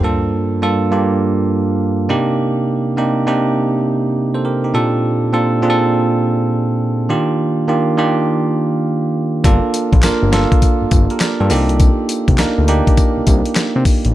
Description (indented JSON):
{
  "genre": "R&B, new jack swing",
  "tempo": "102 BPM",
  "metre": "4/4",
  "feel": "swing 65% on 16ths",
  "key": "unclear",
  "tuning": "A4 = 440 Hz",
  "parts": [
    { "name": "bell-like tine electric piano", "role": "accompaniment", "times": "0.0-14.1 s", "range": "G2 to D5", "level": "-15 LUFS", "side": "right 2 dB", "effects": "none" },
    { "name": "fat analog bass", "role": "bass", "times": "9.4-14.1 s", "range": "G1 to C3", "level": "-16 LUFS", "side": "left 1 dB", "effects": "none" },
    { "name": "dusty soul sampler-style drum kit", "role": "drums", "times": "9.4-14.1 s", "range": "handclaps, hi-hat, kick drum, snare drum, tambourine", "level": "-14 LUFS", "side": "left 1 dB", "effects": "none" }
  ],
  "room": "light reverb, digital ambience",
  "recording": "dark, warm production",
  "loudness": "-13 LUFS",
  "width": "side -14 dB against mid",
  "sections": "0.0-14.1 A section",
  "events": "none",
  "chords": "0.0 Gm9; 2.1 Cm9; 4.7 Bbmaj7; 7.1 Ebmaj7; 9.4 Gm9; 11.5 Cm9",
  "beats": "| 0.03 0.62 1.21 1.80 | 2.39 2.98 3.56 4.15 | 4.74 5.33 5.92 6.50 | 7.09 7.68 8.27 8.86 | 9.45 10.03 10.62 11.21 | 11.80 12.39 12.97 13.56"
}